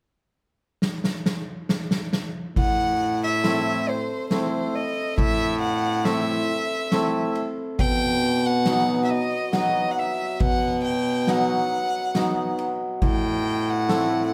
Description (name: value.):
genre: klezmer.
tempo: 69 BPM.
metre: 3/4.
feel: straight.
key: A dorian sharp4.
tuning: A4 = 439 Hz.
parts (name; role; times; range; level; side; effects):
street-band drum kit; drums; 0.8-14.1 s; kick drum, ride cymbal, snare drum; -28 LUFS; equal; none.
warm violin; melody; 2.6-14.3 s; C5 to G5; -29 LUFS; equal; none.
warm baritone saxophone; bass; 2.6-14.3 s; A2 to B2; -27 LUFS; equal; none.
hammered dulcimer; accompaniment; 3.4-14.3 s; F#3 to E4; -29 LUFS; equal; none.
room: moderate small room reverb, RT60 0.6 s.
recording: heard from further back in the room.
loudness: -24 LUFS.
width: mono.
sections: 0.0-2.6 A section; 2.6-14.3 B section.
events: drum fill 0.8-2.6.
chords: 0.0 N.C.; 2.6 Am; 7.8 B; 13.0 Am.